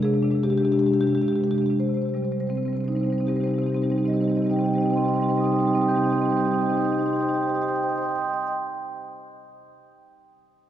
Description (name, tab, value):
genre	classical, contemporary piece for solo marimba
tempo	45 BPM (dotted quarters)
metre	6/8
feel	rubato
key	C minor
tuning	A4 = 440 Hz
part	marimba with medium mallets	solo	0.0-8.6 s	C3 to G6	-21 LUFS	equal	none
room	wet cathedral reverb, RT60 4.1 s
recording	dark, warm production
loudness	-21 LUFS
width	side -11 dB against mid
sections	0.0-1.8 A section; 1.8-7.1 B section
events	slowing down 0.0-1.8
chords	0.0 Abmaj7#11/C; 1.8 Cm